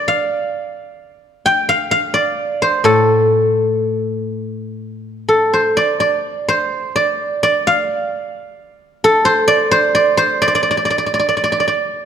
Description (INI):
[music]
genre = chinese traditional, Chinese solo plucked strings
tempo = 64 BPM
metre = 2/4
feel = uneven beats, rubato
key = D yu mode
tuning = A4 = 440 Hz
[part]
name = guzheng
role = solo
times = 0.0-12.1 s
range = A2 to A5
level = -14 LUFS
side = equal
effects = none
[sound]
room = light reverb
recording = dark, warm production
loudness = -13 LUFS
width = side -8 dB against mid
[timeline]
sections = 0.0-12.1 A section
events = none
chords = none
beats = 0.09 | 1.00 1.92 | 2.85 3.81 | 4.79 5.76 | 6.70 7.65 | 8.57 9.49 | 10.43 11.40